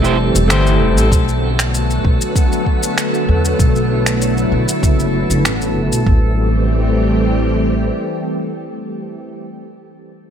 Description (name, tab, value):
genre	sunset chillout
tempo	97 BPM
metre	4/4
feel	straight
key	A dorian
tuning	A4 = 436 Hz
part	electric guitar at the edge of break-up	accompaniment	0.0-1.1 s	A3 to C5	-20 LUFS	moving between left 5 dB and right 5 dB	auto-pan, ping-pong delay
part	soft string machine	sustained chords	0.0-9.3 s	D3 to G4	-18 LUFS	equal	ensemble chorus
part	upright bass	bass	0.0-7.9 s	E1 to E2	-16 LUFS	equal	none
part	electronic shaker and finger snaps	drums	0.0-6.0 s	none	-21 LUFS	equal	none
part	drifting glass-harmonics texture	texture	0.0-6.1 s	A4 to A5	-27 LUFS	right 1 dB	chorus, built-in reverb
part	deep house drum kit	drums	1.1-6.2 s	kick drum, toms	-15 LUFS	equal	none
room	light reverb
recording	none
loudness	-13 LUFS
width	side -8 dB against mid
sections	0.0-6.1 A section; 6.1-8.5 B section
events	none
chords	0.0 Am7; 1.1 Bm7; 6.1 Am7